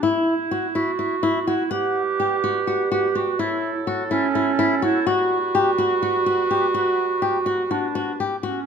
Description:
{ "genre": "contemporary instrumental, chamber music in an uneven meter", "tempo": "250 BPM (eighths)", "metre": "7/8", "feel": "straight", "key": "unclear", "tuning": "A4 = 439 Hz", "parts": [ { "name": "mellow clarinet", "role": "second line", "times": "0.0-8.7 s", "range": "C#4 to G4", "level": "-22 LUFS", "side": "right 5 dB", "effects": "none" }, { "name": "flamenco guitar", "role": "arpeggios", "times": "0.0-8.6 s", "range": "E4 to F#5", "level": "-23 LUFS", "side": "left 4 dB", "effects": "none" }, { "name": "mellow woodwind section", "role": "sustained chords", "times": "1.7-8.4 s", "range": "F#3 to F#5", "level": "-29 LUFS", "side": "right 2 dB", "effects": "none" } ], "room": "moderate recital hall reverb, RT60 1.6 s", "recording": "dark, warm production", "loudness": "-19 LUFS", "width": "side -6 dB against mid", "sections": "0.0-8.4 A section", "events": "none", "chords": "0.0 Esus2; 1.7 Gmaj7; 3.4 F#m7; 5.1 Gmaj7", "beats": "| 0.03 0.27 0.51 0.75 0.99 1.23 1.47 | 1.72 1.96 2.20 2.44 2.68 2.92 3.16 | 3.40 3.64 3.88 4.12 4.36 4.59 4.83 | 5.07 5.31 5.55 5.79 6.03 6.27 6.51 | 6.75 6.99 7.22 7.47 7.71 7.96 8.20 | 8.44" }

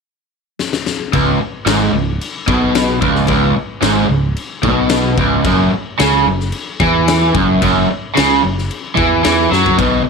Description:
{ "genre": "classic rock", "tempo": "111 BPM", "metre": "4/4", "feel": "straight", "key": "unclear", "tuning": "A4 = 441 Hz", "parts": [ { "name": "huge arena drum kit", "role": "drums", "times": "0.6-9.9 s", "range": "crash cymbal, kick drum, snare drum, toms", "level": "-20 LUFS", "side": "left 4 dB", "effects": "none" }, { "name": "raw garage guitar", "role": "riff", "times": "1.1-10.1 s", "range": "Db2 to Gb3", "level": "-13 LUFS", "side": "right 1 dB", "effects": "overdrive" }, { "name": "fingered electric bass", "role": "bass", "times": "1.1-10.1 s", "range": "Db1 to Gb2", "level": "-19 LUFS", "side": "equal", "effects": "none" } ], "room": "studio reverb", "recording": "1960s-style stereo", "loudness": "-12 LUFS", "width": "side -5 dB against mid", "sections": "0.0-1.1 A section; 1.1-10.1 B section", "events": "drum fill 0.6-1.1, 9.5", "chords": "0.0 N.C.; 1.1 Db5; 5.4 Gb5", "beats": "0.05 0.59 | 1.13 1.67 2.20 2.74 | 3.28 3.82 4.36 4.90 | 5.44 5.98 6.52 7.06 | 7.60 8.14 8.69 9.23 | 9.77" }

